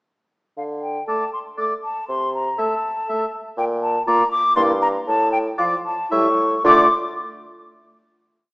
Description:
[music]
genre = quick classical-period movement for wind quintet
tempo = 118 BPM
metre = 3/4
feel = straight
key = D minor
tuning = A4 = 440 Hz
[part]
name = mellow hollow silver concert flute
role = melody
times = 0.6-7.0 s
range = F5 to D6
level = -20 LUFS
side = left 1 dB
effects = none
[part]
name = mellow bassoon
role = bass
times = 0.6-6.9 s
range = G2 to D3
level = -24 LUFS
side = equal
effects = none
[part]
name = clear oboe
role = second line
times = 1.1-6.9 s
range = D5 to E5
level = -22 LUFS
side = equal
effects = none
[part]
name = dark clarinet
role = accompaniment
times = 1.1-6.9 s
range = E4 to A4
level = -25 LUFS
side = right 1 dB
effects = none
[part]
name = warm French horn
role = accompaniment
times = 1.1-6.9 s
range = F3 to Bb3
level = -28 LUFS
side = equal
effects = none
[sound]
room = wet scoring stage reverb, RT60 1.6 s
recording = small speaker sound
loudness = -17 LUFS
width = side -25 dB against mid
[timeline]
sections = 0.6-6.6 A section; 6.6-8.2 final chord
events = none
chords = 0.6 D5; 2.1 Am/C; 3.6 Bb; 4.6 Em7b5/G; 5.1 Dm/A (rootless); 6.1 A7; 6.6 Dm

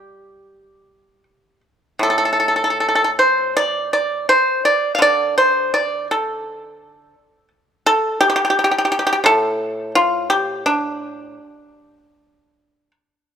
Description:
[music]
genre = chinese traditional, Chinese solo plucked strings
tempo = 72-87 BPM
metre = 4/4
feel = rubato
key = D yu mode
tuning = A4 = 440 Hz
[part]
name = pipa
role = solo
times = 0.0-12.9 s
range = A2 to F5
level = -15 LUFS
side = equal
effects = none
[sound]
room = light reverb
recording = close, detailed microphones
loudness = -15 LUFS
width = side -8 dB against mid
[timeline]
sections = 0.0-13.4 A section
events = none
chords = none

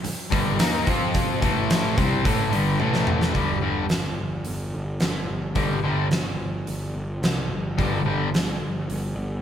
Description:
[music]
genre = hard rock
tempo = 108 BPM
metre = 4/4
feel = straight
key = unclear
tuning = A4 = 440 Hz
[part]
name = crunchy overdriven guitar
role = riff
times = 0.0-8.3 s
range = G2 to F4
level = -25 LUFS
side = left 7 dB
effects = none
[part]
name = sludgy distorted guitar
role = riff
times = 0.0-8.3 s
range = G2 to F4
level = -28 LUFS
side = right 8 dB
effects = overdrive
[part]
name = huge arena drum kit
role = drums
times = 0.0-9.0 s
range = hi-hat, kick drum, snare drum, toms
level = -25 LUFS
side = right 1 dB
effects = none
[part]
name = fuzz picked electric bass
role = bass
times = 0.1-9.4 s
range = G1 to F2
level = -28 LUFS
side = equal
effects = overdrive
[sound]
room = moderate studio reverb, RT60 0.5 s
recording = band playing live in one room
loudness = -21 LUFS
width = side -9 dB against mid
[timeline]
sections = 0.0-3.3 A section; 3.3-9.4 B section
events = drum fill 2.8-3.3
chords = 0.0 Gm; 0.9 F5; 1.4 A5; 2.0 G5; 2.8 A5; 3.3 G5

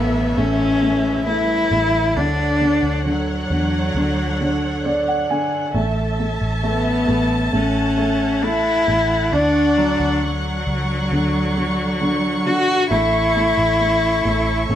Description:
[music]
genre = pop ballad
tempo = 67 BPM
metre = 4/4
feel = straight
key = A major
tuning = A4 = 440 Hz
[part]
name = dark cello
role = melody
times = 0.0-14.8 s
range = F#3 to F#4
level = -19 LUFS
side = left 1 dB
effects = none
[part]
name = warm concert grand piano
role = accompaniment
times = 0.0-14.8 s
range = D3 to G#5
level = -23 LUFS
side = right 1 dB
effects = none
[part]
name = warm studio string section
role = sustained chords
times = 0.0-14.8 s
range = C#4 to C#6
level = -26 LUFS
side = equal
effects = none
[part]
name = vintage muted fingered electric bass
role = bass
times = 0.0-14.8 s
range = A1 to E2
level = -23 LUFS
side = equal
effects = none
[part]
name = downlifter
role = sound effects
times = 0.0-5.7 s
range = none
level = -36 LUFS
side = equal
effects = none
[sound]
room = moderate large studio reverb, RT60 0.8 s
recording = band playing live in one room, faint mains hum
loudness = -16 LUFS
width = side -11 dB against mid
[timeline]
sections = 0.0-14.8 A section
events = grand piano fill 4.4-5.7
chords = 0.0 A; 2.2 Dmaj7; 5.7 A; 9.3 Dmaj7; 12.9 A

